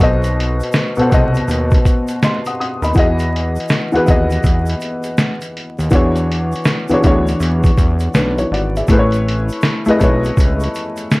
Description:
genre	lo-fi hip hop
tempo	81 BPM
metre	4/4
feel	swing 64% on 16ths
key	unclear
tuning	A4 = 440 Hz
part	dark upright piano	accompaniment	0.0-11.2 s	B2 to D#6	-17 LUFS	left 1 dB	cassette tape, plate reverb
part	fat analog bass	bass	0.0-10.7 s	G#1 to E2	-18 LUFS	equal	none
part	lo-fi sampler-style drum kit	drums	0.0-11.2 s	hi-hat, kick drum, snare drum	-16 LUFS	equal	none
part	egg shaker	percussion	0.2-11.2 s	none	-41 LUFS	right 6 dB	none
room	moderate small room reverb, RT60 0.6 s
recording	vinyl crackle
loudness	-13 LUFS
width	side -23 dB against mid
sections	0.0-11.2 A section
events	none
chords	0.0 B7b9; 3.0 Emaj9; 5.9 E13; 8.9 Amaj7

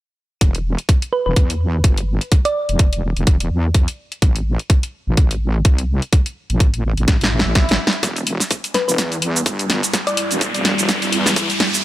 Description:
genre	bass house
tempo	126 BPM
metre	4/4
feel	swing 56% on 16ths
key	E minor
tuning	A4 = 441 Hz
part	wobble bass	bass	0.4-11.5 s	E1 to E2	-20 LUFS	equal	chorus, overdrive, sidechain pumping, high-pass filter
part	electronic kick drum	drums	0.4-11.5 s	none	-14 LUFS	equal	high-pass filter on kick, high-pass filter on room
part	house drum kit	drums	0.4-11.8 s	hi-hat, shaker, snare drum	-19 LUFS	equal	none
part	thumb-piano-like synth pluck	melody	1.1-2.9, 8.7-10.5 s	B4 to D5	-23 LUFS	equal	chorus, tape echo
part	swell and riser	sound effects	7.2-11.8 s	none	-24 LUFS	equal	none
part	deep dark ambient pad	sustained chords	9.4-11.8 s	G3 to E5	-25 LUFS	right 1 dB	chorus, built-in reverb, sidechain pumping
room	light reverb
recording	none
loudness	-15 LUFS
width	side -15 dB against mid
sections	0.4-8.0 A section; 8.0-11.8 B section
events	drum fill 7.1-8.0, 8.0-11.8; swell 7.2-8.0; build-up 8.0-11.8; riser 8.0-11.8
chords	0.4 N.C.; 8.0 Em7

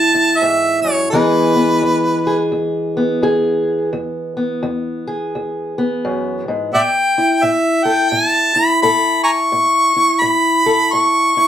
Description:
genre	acoustic country blues, solo or duo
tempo	86 BPM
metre	4/4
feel	swing 62% on 8ths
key	E major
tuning	A4 = 440 Hz
part	clear harmonica	melody	0.0-2.5, 6.7-11.5 s	B4 to C#6	-13 LUFS	equal	slapback echo
part	fingerpicked steel-string acoustic guitar	accompaniment	0.0-11.5 s	E2 to A4	-17 LUFS	equal	none
room	moderate studio ambience, RT60 0.5 s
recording	heard from further back in the room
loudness	-13 LUFS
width	side -10 dB against mid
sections	0.0-11.5 A section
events	none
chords	0.0 A5; 1.1 E; 6.7 A

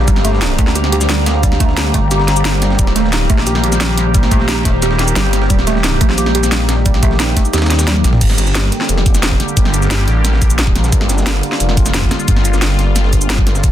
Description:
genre	dark technical drum and bass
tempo	177 BPM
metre	4/4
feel	straight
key	G minor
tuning	A4 = 440 Hz
part	sweeping resonant pad	sustained chords	0.0-13.7 s	D3 to G4	-21 LUFS	right 1 dB	chorus, sidechain pumping
part	phased detuned saw bass	bass	0.0-0.6, 2.8-6.0, 8.0-13.7 s	Eb1 to Bb1	-15 LUFS	equal	phaser, overdrive
part	warbly tape-like pad	texture	0.0-8.2 s	G4 to Bb5	-23 LUFS	left 1 dB	chorus, built-in reverb, phaser, sidechain pumping
part	warbly dusty pluck	arpeggios	0.1-8.0 s	G3 to G4	-21 LUFS	right 5 dB	chorus, cassette tape, sidechain pumping, ping-pong delay
part	breakbeat sampler-style drum kit	drums	0.1-13.7 s	hi-hat, snare drum	-27 LUFS	equal	none
part	drum and bass drum kit	drums	0.1-13.7 s	crash cymbal, hi-hat, shaker, snare drum, toms	-18 LUFS	equal	overdrive
part	electronic kick drum	drums	0.1-13.7 s	none	-14 LUFS	equal	none
part	pulsing pluck wobble bass	bass	0.6-8.0 s	Eb1 to Eb2	-15 LUFS	equal	chorus
room	little or no reverb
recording	dense, heavily limited modern master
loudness	-11 LUFS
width	side -11 dB against mid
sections	0.0-8.2 A section; 8.2-13.7 A section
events	drop 0.0-8.2, 8.2-13.7; kick drops out 7.5-8.2; drum fill 7.9-8.2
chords	0.0 Gm; 2.8 Eb; 8.2 Gm

